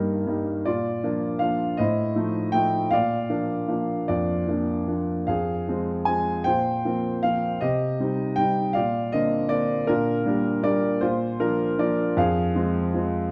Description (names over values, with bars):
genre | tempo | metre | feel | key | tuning
classical, lyrical solo piano | 52 BPM (dotted quarters) | 6/8 | rubato | unclear | A4 = 440 Hz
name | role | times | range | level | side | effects
warm concert grand piano | solo | 0.0-13.3 s | F2 to Ab5 | -24 LUFS | equal | none
room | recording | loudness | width
moderate recital hall reverb, RT60 1.4 s | dark, warm production | -24 LUFS | mono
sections
0.0-13.3 A section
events
none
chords
0.0 Eb/G; 0.7 Bb; 1.8 F7/A; 2.9 Bb; 5.3 Fm; 6.5 Bbsus2; 7.6 Cm; 8.8 Bbadd9; 9.9 Gm/Bb; 11.0 Bb; 12.2 Fm